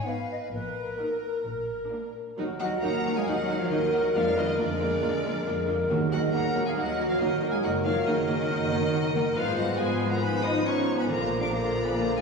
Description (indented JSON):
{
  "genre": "quick classical-period movement for symphony orchestra",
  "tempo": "138 BPM",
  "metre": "4/4",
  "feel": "rubato",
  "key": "Eb minor",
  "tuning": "A4 = 439 Hz",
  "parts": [
    { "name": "hollow small flute group", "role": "second line", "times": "0.0-12.2 s", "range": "Bb4 to Cb6", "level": "-32 LUFS", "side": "equal", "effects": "none" },
    { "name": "warm chamber violin section", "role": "second line", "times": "0.0-12.2 s", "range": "Bb3 to Cb5", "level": "-37 LUFS", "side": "left 2 dB", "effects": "none" },
    { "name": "rich chamber violin section", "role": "melody", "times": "0.1-12.2 s", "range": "F4 to Eb6", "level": "-35 LUFS", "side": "left 3 dB", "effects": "none" },
    { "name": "warm chamber viola section", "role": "accompaniment", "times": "0.1-12.2 s", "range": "D3 to Eb4", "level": "-33 LUFS", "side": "right 1 dB", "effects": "none" },
    { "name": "rich chamber double bass section", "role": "bass", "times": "0.5-12.2 s", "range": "Gb1 to F2", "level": "-35 LUFS", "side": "equal", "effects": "none" },
    { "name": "warm studio cello section", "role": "bass", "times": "0.5-12.2 s", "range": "Bb2 to Eb4", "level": "-33 LUFS", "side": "right 1 dB", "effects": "none" },
    { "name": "clear oboe", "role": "second line", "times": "2.4-12.2 s", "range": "Bb4 to D5", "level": "-37 LUFS", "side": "right 1 dB", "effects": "none" },
    { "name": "mellow bassoon", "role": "accompaniment", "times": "2.4-12.2 s", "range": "F3 to Ab3", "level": "-34 LUFS", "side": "right 2 dB", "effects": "none" },
    { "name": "mellow clarinet", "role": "second line", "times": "2.6-12.2 s", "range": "D4 to Eb5", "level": "-35 LUFS", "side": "equal", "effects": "none" },
    { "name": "mellow French horn section", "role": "sustained chords", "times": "3.3-12.2 s", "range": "D4 to Bb4", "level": "-32 LUFS", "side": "left 2 dB", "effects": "none" },
    { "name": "timpani", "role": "percussion", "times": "5.9-6.5, 11.1-11.7 s", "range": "Bb2 to Eb3", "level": "-34 LUFS", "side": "right 4 dB", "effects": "none" }
  ],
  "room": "wet scoring stage reverb, RT60 1.9 s",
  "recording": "heard from further back in the room, studio reverb",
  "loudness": "-24 LUFS",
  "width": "side -4 dB against mid",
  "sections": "0.0-2.4 A section; 2.4-12.2 B section",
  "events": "none",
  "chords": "0.0 F7(b5, no3); 0.5 Ebm/Bb; 1.5 Bb; 2.4 Ebm; 4.1 Bb7/F; 5.9 Ebm; 7.6 Ebm/Gb; 9.4 Fdim/Ab; 11.1 Bb"
}